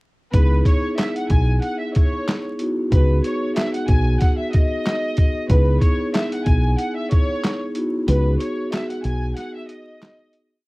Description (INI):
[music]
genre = hip hop, boom-bap hip-hop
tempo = 93 BPM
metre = 4/4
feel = swing 57% on 16ths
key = C# minor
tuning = A4 = 440 Hz
[part]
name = warm studio violin section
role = melody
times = 0.3-10.6 s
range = B4 to G#5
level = -27 LUFS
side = equal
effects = high-pass filter, low-pass filter, cassette tape
[part]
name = vibraphone with soft mallets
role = accompaniment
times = 0.3-10.7 s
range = B3 to G#4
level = -24 LUFS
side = equal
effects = high-pass filter, low-pass filter, cassette tape
[part]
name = deep dub fingered electric bass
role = bass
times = 0.3-9.3 s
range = B1 to C#2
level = -18 LUFS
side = equal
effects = none
[part]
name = boom bap sampler-style drum kit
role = drums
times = 0.3-10.5 s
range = handclaps, hi-hat, kick drum, snare drum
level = -18 LUFS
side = equal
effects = cassette tape
[sound]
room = light reverb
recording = home recording on cassette, vinyl crackle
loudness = -17 LUFS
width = side -23 dB against mid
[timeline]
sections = 0.3-10.7 verse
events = break 8.1-10.7; fade-out 8.1-10.7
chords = 0.3 C#m7; 2.9 B6; 5.5 C#m7; 8.1 B6